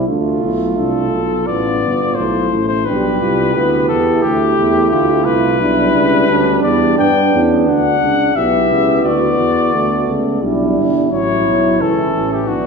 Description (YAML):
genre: classical, brass quintet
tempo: 87 BPM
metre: 4/4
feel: straight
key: unclear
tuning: A4 = 440 Hz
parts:
  - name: mellow flugelhorn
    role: second line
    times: 0.0-12.7 s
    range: C#4 to G4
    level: -19 LUFS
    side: right 5 dB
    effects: none
  - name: clear French horn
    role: accompaniment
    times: 0.0-12.7 s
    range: E3 to B3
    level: -20 LUFS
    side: left 3 dB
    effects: none
  - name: dark trombone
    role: accompaniment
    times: 0.0-12.7 s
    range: B3 to F4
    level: -20 LUFS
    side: right 4 dB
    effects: none
  - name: warm bass trombone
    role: bass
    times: 0.0-12.7 s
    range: G1 to G2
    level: -19 LUFS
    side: right 1 dB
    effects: none
  - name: warm cornet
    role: melody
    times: 0.8-12.7 s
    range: F#4 to G5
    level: -18 LUFS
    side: left 6 dB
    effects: none
room: wet recital hall reverb, RT60 1.5 s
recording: recorded in a church or concert hall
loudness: -12 LUFS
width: side -5 dB against mid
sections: 0.0-12.7 A section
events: none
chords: 0.1 Dm; 2.9 G7/B; 5.6 G/B; 8.4 Em7/B; 11.1 A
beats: | 0.07 0.77 1.48 2.18 | 2.87 3.56 4.23 4.91 | 5.60 6.29 6.99 7.67 | 8.36 9.04 9.73 10.43 | 11.12 11.81 12.50